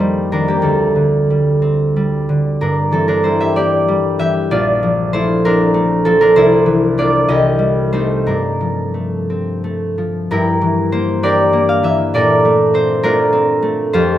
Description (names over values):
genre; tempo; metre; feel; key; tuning
classical, solo harp piece; 58-68 BPM (dotted quarters); 6/8; rubato; G dorian; A4 = 440 Hz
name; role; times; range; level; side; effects
concert harp; solo; 0.0-14.2 s; Bb1 to F5; -12 LUFS; equal; none
room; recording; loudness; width
moderate recital hall reverb, RT60 1.3 s; close, detailed microphones; -12 LUFS; side -12 dB against mid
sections
0.0-10.3 A section; 10.3-14.2 B section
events
none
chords
0.0 F9sus4; 0.6 D7sus4; 2.6 Gm6; 4.5 Bbmaj9; 6.4 C9; 7.3 Cm6; 8.3 Gm11; 10.3 Gm6; 12.1 Bbmaj9